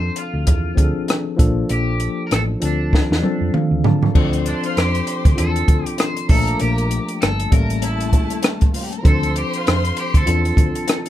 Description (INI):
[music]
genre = lush 1970s-style soul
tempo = 98 BPM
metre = 4/4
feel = swing 58% on 16ths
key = D minor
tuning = A4 = 439 Hz
[part]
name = electric guitar at the edge of break-up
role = melody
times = 0.0-11.1 s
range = D4 to C5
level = -26 LUFS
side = equal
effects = lush chorus
[part]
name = tine electric piano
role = accompaniment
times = 0.0-11.1 s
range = F3 to A5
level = -24 LUFS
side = left 3 dB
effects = medium stereo tremolo
[part]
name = hollow-body short-scale fingered electric bass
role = bass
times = 0.0-10.7 s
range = G1 to D3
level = -21 LUFS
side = equal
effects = none
[part]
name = compact cocktail drum kit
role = drums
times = 0.2-11.1 s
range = crash cymbal, hi-hat, kick drum, rim click, snare drum, toms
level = -17 LUFS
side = equal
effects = none
[part]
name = warm studio string section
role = second line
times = 4.2-10.8 s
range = A3 to C6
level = -28 LUFS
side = right 1 dB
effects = none
[sound]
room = little or no reverb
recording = rough home demo mix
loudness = -16 LUFS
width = side -12 dB against mid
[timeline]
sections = 0.0-4.2 A section; 4.2-11.1 B section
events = drum fill 2.9-4.2; tine electric piano fill 3.2-4.2; clean electric guitar solo 4.2-11.1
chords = 0.0 Dm7; 1.4 Bbmaj7; 2.6 Dm7; 6.3 Bbmaj7; 7.5 A7b9; 9.0 Dm7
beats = 0.47 1.09 | 1.70 2.31 2.93 3.54 | 4.15 4.76 5.38 5.99 | 6.60 7.21 7.82 8.44 | 9.05 9.66 10.27 10.88